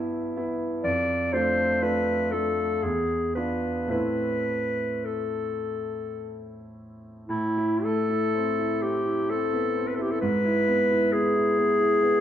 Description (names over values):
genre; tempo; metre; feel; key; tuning
classical, romantic duo for clarinet and grand piano; 52-69 BPM; 3/4; rubato; A minor; A4 = 439 Hz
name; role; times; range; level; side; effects
bright concert grand piano; accompaniment; 0.0-12.2 s; E2 to F4; -28 LUFS; right 1 dB; none
warm clarinet; melody; 0.8-12.2 s; E4 to D5; -25 LUFS; left 1 dB; none
room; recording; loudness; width
moderate recital hall reverb, RT60 1.5 s; dark, warm production; -23 LUFS; side -10 dB against mid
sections
0.0-7.3 A section; 7.3-12.2 A section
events
none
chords
0.0 Em/G; 0.8 Dm/F; 2.8 E7b9; 3.9 Am; 10.2 E/G#